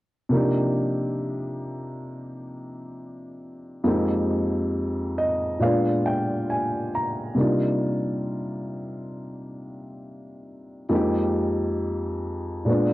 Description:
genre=hip hop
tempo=68 BPM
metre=4/4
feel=swing 63% on 16ths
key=C minor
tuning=A4 = 439 Hz
part: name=dark upright piano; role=accompaniment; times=0.3-12.9 s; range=F2 to Bb5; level=-24 LUFS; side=equal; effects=cassette tape, low-pass filter
room=light reverb, small room ambience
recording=home recording on cassette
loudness=-22 LUFS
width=side -17 dB against mid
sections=0.3-7.4 A section; 7.4-12.9 B section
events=upright piano fill 4.7-7.4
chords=0.3 Cm11; 3.9 Fm11; 5.6 Bb7b9; 7.4 Cm11; 10.9 Fm11

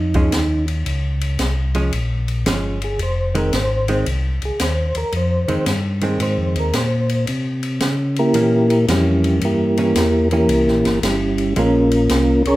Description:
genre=soul jazz organ trio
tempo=112 BPM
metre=4/4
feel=swing 66% on 8ths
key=F minor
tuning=A4 = 440 Hz
part: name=percussive tonewheel organ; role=melody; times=0.0-12.6 s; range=G3 to Db5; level=-18 LUFS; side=equal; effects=slow rotary speaker, chorus vibrato
part: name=mellow tonewheel organ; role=bass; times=0.0-12.5 s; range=F1 to Db3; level=-20 LUFS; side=equal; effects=overdrive, chorus vibrato, slow rotary speaker
part: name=hollow-body jazz guitar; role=accompaniment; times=0.1-11.9 s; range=Eb3 to Db4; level=-24 LUFS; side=right 2 dB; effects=none
part: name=compact cocktail drum kit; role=drums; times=0.1-12.5 s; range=hi-hat, kick drum, ride cymbal, snare drum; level=-25 LUFS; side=equal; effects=none
room=light reverb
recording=none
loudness=-16 LUFS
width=side -16 dB against mid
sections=0.0-12.6 A section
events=tonewheel organ solo 0.0-12.6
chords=0.0 Bbm7; 3.0 Fm7; 7.3 C7b9; 11.6 Bbm7

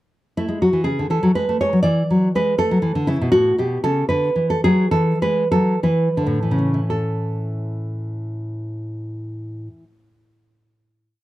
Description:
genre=classical, baroque-style dance for nylon-string guitar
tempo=52-82 BPM (dotted quarters)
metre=6/8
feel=rubato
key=A major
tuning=A4 = 441 Hz
part: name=nylon-string guitar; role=solo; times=0.4-10.3 s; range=A2 to D5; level=-18 LUFS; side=equal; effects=none
room=small room ambience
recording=dry, close 1970s-style studio recording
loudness=-17 LUFS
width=side -16 dB against mid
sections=0.4-6.9 A section; 6.9-11.0 final chord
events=slowing down 2.6-6.9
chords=0.4 A; 1.9 E7; 2.6 A; 4.1 D; 4.9 Eadd11; 5.8 E5; 6.9 A

